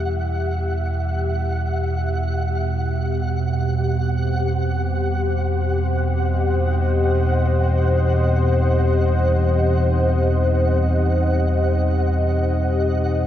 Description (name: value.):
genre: dark ambient drone.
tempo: free time.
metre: none.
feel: none.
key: unclear.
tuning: A4 = 441 Hz.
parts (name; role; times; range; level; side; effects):
dark analog pad; sustained chords; 0.0-13.3 s; B3 to E5; -23 LUFS; left 2 dB; chorus.
deep rumbling drone; drone; 0.0-13.3 s; E2 to B2; -19 LUFS; equal; built-in reverb.
flickering grainy texture; texture; 0.0-13.3 s; F#5; -30 LUFS; right 1 dB; built-in reverb.
room: moderate huge ambient reverb, RT60 9.5 s.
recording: in a vast, echoing space.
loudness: -18 LUFS.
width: side -11 dB against mid.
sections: 0.0-13.3 A section.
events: fade-in on analog synth pad 0.0-13.3; fade-in on synth texture 0.0-13.3.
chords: 0.0 Em; 3.2 Cm.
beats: free time.